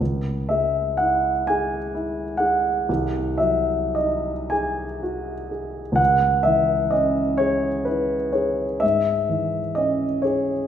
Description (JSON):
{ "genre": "classical, romantic nocturne for solo piano", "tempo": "34-44 BPM (dotted quarters)", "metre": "12/8", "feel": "rubato", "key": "C# minor", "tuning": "A4 = 435 Hz", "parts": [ { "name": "warm grand piano", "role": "solo", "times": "0.0-10.7 s", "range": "B#1 to G#5", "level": "-20 LUFS", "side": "equal", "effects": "none" } ], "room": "wet recital hall reverb, RT60 1.6 s", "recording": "recorded in a church or concert hall", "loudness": "-20 LUFS", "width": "side -9 dB against mid", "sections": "0.0-10.7 A section", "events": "none", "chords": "0.0 C#m; 2.9 G#7/B#; 6.0 C#m" }